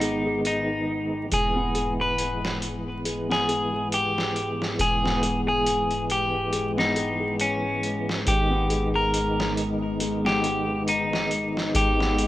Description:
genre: trip hop.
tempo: 69 BPM.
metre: 4/4.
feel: swing 56% on 16ths.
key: unclear.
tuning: A4 = 440 Hz.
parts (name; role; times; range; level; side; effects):
electric guitar at the edge of break-up; melody; 0.0-12.3 s; C#4 to B4; -25 LUFS; equal; tape echo.
tonewheel organ; accompaniment; 0.0-12.3 s; D#3 to D#4; -31 LUFS; equal; overdrive, chorus vibrato, slow rotary speaker, tremolo.
deep dark ambient pad; sustained chords; 0.0-12.3 s; G#3 to D#5; -33 LUFS; left 1 dB; chorus, built-in reverb.
felt-muted upright piano; arpeggios; 0.0-12.3 s; G#3 to G#4; -31 LUFS; left 1 dB; low-pass filter, tape echo.
soft 808-style bass; bass; 0.0-12.3 s; E1 to G#1; -30 LUFS; equal; none.
trip hop sampler-style drum kit; drums; 0.0-12.3 s; hi-hat, snare drum; -31 LUFS; equal; high-pass filter on hats, vintage 12-bit sampler grit, high-pass filter on snare, high-pass filter on room.
room: light reverb, digital ambience.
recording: rough home demo mix, vinyl crackle.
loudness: -22 LUFS.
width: side -15 dB against mid.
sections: 0.0-12.3 A section.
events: filter sweep on ambient pad 0.0-12.3.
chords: 0.0 G#m; 1.3 E; 8.3 G#m.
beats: 0.44 | 1.31 2.18 3.05 3.92 | 4.79 5.66 6.53 7.40 | 8.27 9.14 10.01 10.88 | 11.75.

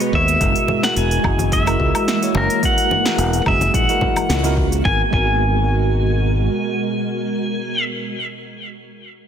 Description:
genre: sunset chillout.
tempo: 108 BPM.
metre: 4/4.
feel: swing 53% on 16ths.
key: G# minor.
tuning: A4 = 440 Hz.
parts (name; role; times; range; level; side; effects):
bell-like tine electric piano; accompaniment; 0.0-8.2 s; G#3 to C#5; -24 LUFS; equal; fast stereo tremolo, auto-pan, vintage 12-bit sampler grit, tape echo.
ethereal airy pad; sustained chords; 0.0-7.8 s; B2 to A#4; -25 LUFS; right 3 dB; ensemble chorus, built-in reverb.
deep house drum kit; drums; 0.0-4.8 s; hi-hat, shaker, snare drum, woodblock; -24 LUFS; equal; none.
fingered electric bass; bass; 0.1-6.5 s; E1 to D#2; -19 LUFS; equal; tube saturation.
electronic kick drum; drums; 0.1-5.3 s; none; -22 LUFS; equal; none.
pedal steel guitar; melody; 0.2-7.8 s; A#4 to G#5; -21 LUFS; left 1 dB; tape echo.
congas; percussion; 0.7-4.5 s; none; -27 LUFS; left 3 dB; none.
room: light reverb.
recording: dense, heavily limited modern master.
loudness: -16 LUFS.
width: side -8 dB against mid.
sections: 0.0-4.8 A section; 4.8-7.1 B section.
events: band accent 4.3.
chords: 0.4 F#9; 4.8 G#m9.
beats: | 0.41 0.96 1.52 2.07 | 2.63 3.18 3.74 4.29 | 4.85 5.41 5.96 6.52.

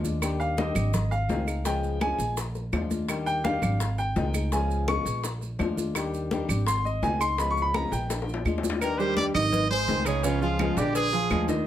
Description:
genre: latin, Cuban son and guajira.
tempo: 168 BPM.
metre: 4/4.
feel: straight.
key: Eb major.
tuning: A4 = 440 Hz.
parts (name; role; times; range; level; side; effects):
flamenco guitar; accompaniment; 0.0-11.7 s; Db3 to Ab4; -32 LUFS; left 5 dB; none.
upright bass; bass; 0.0-11.7 s; Ab1 to Eb2; -30 LUFS; right 1 dB; none.
bongos and cowbell; percussion; 0.0-11.7 s; none; -35 LUFS; left 5 dB; none.
congas; percussion; 0.0-11.7 s; none; -33 LUFS; left 2 dB; none.
maracas; percussion; 0.0-11.7 s; none; -40 LUFS; right 8 dB; none.
claves; percussion; 0.2-11.5 s; none; -37 LUFS; right 6 dB; none.
warm baby grand piano; arpeggios; 0.4-11.7 s; Db3 to Db6; -28 LUFS; right 1 dB; none.
clear trumpet; melody; 8.8-11.4 s; F4 to Eb5; -27 LUFS; right 2 dB; none.
room: light reverb.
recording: close, detailed microphones.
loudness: -24 LUFS.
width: side -11 dB against mid.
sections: 0.0-8.8 A section; 8.8-11.7 B section.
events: grand piano solo 0.0-8.8; drum fill 8.1-8.8.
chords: 0.2 Ebmaj7; 0.9 Ab; 1.7 Db7; 2.4 Bb7; 3.1 Ebmaj7; 3.8 Ab; 4.5 Db7; 5.2 Bb7; 6.0 Ebmaj7; 6.7 Ab; 7.4 Db7; 8.1 Bb7; 8.8 Ebmaj7; 9.5 Ab; 10.2 Db7; 11.0 Bb7.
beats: | 0.22 0.58 0.94 1.30 | 1.66 2.01 2.37 2.73 | 3.09 3.45 3.81 4.16 | 4.52 4.88 5.24 5.60 | 5.96 6.31 6.67 7.03 | 7.39 7.74 8.10 8.46 | 8.81 9.17 9.53 9.88 | 10.24 10.60 10.95 11.31 | 11.66.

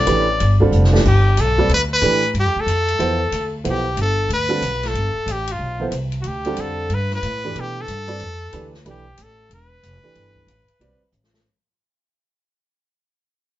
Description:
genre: modal jazz.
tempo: 184 BPM.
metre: 4/4.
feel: swing 63% on 8ths.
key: G mixolydian.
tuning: A4 = 440 Hz.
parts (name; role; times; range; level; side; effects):
brilliant trumpet; melody; 0.0-11.1 s; F4 to D5; -21 LUFS; left 1 dB; none.
warm upright piano; accompaniment; 0.0-11.0 s; D3 to D5; -22 LUFS; right 3 dB; none.
upright bass; bass; 0.0-11.4 s; E1 to B2; -20 LUFS; equal; none.
open jazz drum kit; drums; 0.1-11.4 s; crash cymbal, hi-hat, kick drum, ride cymbal, snare drum; -29 LUFS; left 2 dB; none.
room: light reverb.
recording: band playing live in one room, nothing above 7.7 kHz.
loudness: -16 LUFS.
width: side -14 dB against mid.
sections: 0.0-1.0 A section; 1.0-11.5 B section.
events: drum fill 0.7-1.0, 11.1-11.5; fade-out 1.0-11.5.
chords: 0.0 G9.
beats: 0.07 0.39 0.72 | 1.04 1.37 1.69 2.02 | 2.34 2.67 2.99 3.32 | 3.64 3.97 4.29 4.62 | 4.95 5.27 5.59 5.92 | 6.25 6.57 6.90 7.22 | 7.55 7.87 8.20 8.52 | 8.85 9.18 9.50 9.83 | 10.15 10.48 10.80 11.13.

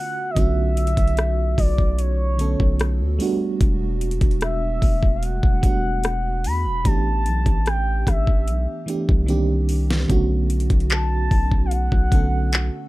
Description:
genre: contemporary R&B.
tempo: 74 BPM.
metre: 4/4.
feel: straight.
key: B minor.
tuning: A4 = 440 Hz.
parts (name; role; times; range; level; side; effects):
gliding portamento lead; melody; 0.0-12.9 s; C#5 to B5; -27 LUFS; equal; chorus, ping-pong delay.
FM electric piano with soft pad layer; accompaniment; 0.0-12.9 s; D3 to A4; -26 LUFS; right 3 dB; chorus, tremolo.
long sustained 808-style bass; bass; 0.4-12.7 s; E1 to E2; -22 LUFS; equal; none.
smooth R&B drum kit; drums; 0.4-12.7 s; handclaps, hi-hat, kick drum, rim click, snare drum; -20 LUFS; equal; none.
room: little or no reverb.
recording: dark, warm production.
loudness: -18 LUFS.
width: side -18 dB against mid.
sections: 0.0-12.9 A section.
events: drum fill 9.3-10.1.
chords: 0.0 Bm9; 3.2 Em11; 6.9 A7sus4; 9.3 Cm9; 10.1 Bm9.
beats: | 0.37 1.18 1.99 2.80 | 3.61 4.42 5.23 6.04 | 6.85 7.66 8.47 9.29 | 10.10 10.91 11.72 12.53.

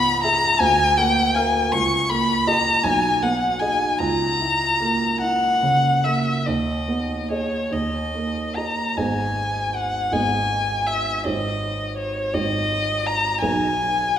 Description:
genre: classical, romantic duo for violin and grand piano.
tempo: 47-55 BPM (dotted quarters).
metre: 6/8.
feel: rubato.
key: G# minor.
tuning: A4 = 437 Hz.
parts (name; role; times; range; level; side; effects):
dark violin; melody; 0.0-14.2 s; C#5 to C#6; -20 LUFS; left 2 dB; none.
warm baby grand piano; accompaniment; 0.0-14.2 s; G#1 to E#5; -24 LUFS; right 2 dB; none.
room: wet recital hall reverb, RT60 1.8 s.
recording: recorded in a church or concert hall.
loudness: -19 LUFS.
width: side -10 dB against mid.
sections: 0.0-9.0 A section; 9.0-14.2 B section.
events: none.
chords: 0.0 C#m7; 0.6 A#/D; 1.7 D#7/C#; 2.8 G#m/B; 4.0 A#dim/C#; 6.5 G#m/D#; 7.7 D#; 9.0 G#m; 11.2 D#7/G#; 13.4 G#m/B.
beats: 0.60 | 1.72 2.85 | 4.00 5.21 | 6.46 7.73 | 8.98 10.13 | 11.24 12.34 | 13.43.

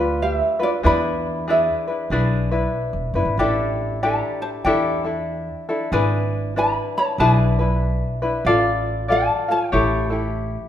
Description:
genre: Hawaiian.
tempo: 95 BPM.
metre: 4/4.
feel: swing 62% on 8ths.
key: unclear.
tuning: A4 = 440 Hz.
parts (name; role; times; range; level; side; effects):
tenor ukulele; melody; 0.0-10.7 s; F4 to B5; -22 LUFS; right 1 dB; none.
tenor ukulele; accompaniment; 0.0-10.7 s; D4 to F5; -22 LUFS; left 2 dB; none.
upright bass; bass; 0.0-10.6 s; E1 to E2; -23 LUFS; right 1 dB; none.
room: moderate recital hall reverb, RT60 1.7 s.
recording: minimal, uncompressed stereo recording.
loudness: -18 LUFS.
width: side -10 dB against mid.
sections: 0.0-10.7 A section.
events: none.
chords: 0.0 G7; 0.8 E7; 3.4 A7sus4; 5.9 E7/G#; 8.5 Dm/A; 9.7 A7.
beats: 0.21 | 0.84 1.48 2.11 2.75 | 3.38 4.02 4.65 5.28 | 5.92 6.55 7.18 7.82 | 8.45 9.08 9.72 10.35.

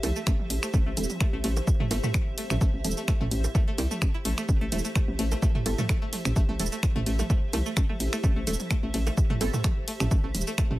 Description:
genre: minimal techno.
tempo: 128 BPM.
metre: 4/4.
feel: swing 54% on 16ths.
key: A minor.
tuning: A4 = 440 Hz.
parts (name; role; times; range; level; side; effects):
string-like resonator pluck; riff; 0.0-10.7 s; G3 to E4; -36 LUFS; left 1 dB; chorus, phaser, sidechain pumping, tape echo.
hollow knocking FM bass; bass; 0.0-10.8 s; E1 to C2; -29 LUFS; equal; sidechain pumping.
punchy analog drum machine; drums; 0.0-10.7 s; finger snaps, hi-hat, ride cymbal, shaker; -32 LUFS; right 1 dB; overdrive.
electronic toms and bongos; percussion; 0.0-10.8 s; none; -33 LUFS; right 2 dB; none.
granular cloud pad; texture; 0.0-10.8 s; G4 to E5; -38 LUFS; equal; built-in reverb, sidechain pumping.
electronic kick drum; drums; 0.3-10.7 s; none; -25 LUFS; equal; overdrive.
filtered dub chord stab; stabs; 0.5-9.5 s; C4 to A4; -37 LUFS; right 2 dB; phaser, analog chorus, vintage 12-bit sampler grit, tape echo.
room: little or no reverb.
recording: none.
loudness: -24 LUFS.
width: side -17 dB against mid.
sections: 0.0-10.8 A section.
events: none.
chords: 0.0 Am.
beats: 0.27 | 0.74 1.21 1.67 2.14 | 2.61 3.08 3.55 4.02 | 4.49 4.96 5.42 5.89 | 6.36 6.83 7.30 7.77 | 8.24 8.71 9.17 9.64 | 10.11 10.58.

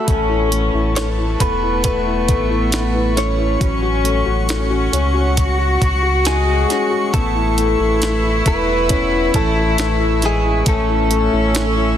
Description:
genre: pop ballad.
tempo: 68 BPM.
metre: 4/4.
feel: straight.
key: A major.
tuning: A4 = 440 Hz.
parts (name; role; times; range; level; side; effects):
direct-recorded clean electric guitar; melody; 0.0-12.0 s; G#3 to C#5; -20 LUFS; equal; wide subtle chorus.
felt-muted upright piano; accompaniment; 0.0-12.0 s; E3 to F#4; -23 LUFS; left 5 dB; none.
airy breathy pad; sustained chords; 0.0-12.0 s; F#4 to E6; -26 LUFS; left 2 dB; chorus.
warm chamber cello section; second line; 0.1-12.0 s; A3 to F#4; -22 LUFS; equal; ping-pong delay.
sub bass with octave; bass; 0.1-12.0 s; E1 to C#2; -20 LUFS; equal; none.
jungle sampler-style drum kit; drums; 0.1-11.8 s; hi-hat, kick drum, snare drum; -20 LUFS; equal; none.
room: light reverb, digital ambience.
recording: dense, heavily limited modern master.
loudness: -14 LUFS.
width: side -10 dB against mid.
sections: 0.0-12.0 A section.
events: none.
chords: 0.1 Aadd9; 3.6 F#m/A; 7.1 Aadd9; 10.7 A.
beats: | 0.08 0.96 1.84 2.73 | 3.61 4.49 5.37 6.26 | 7.14 8.02 8.90 9.79 | 10.67 11.55.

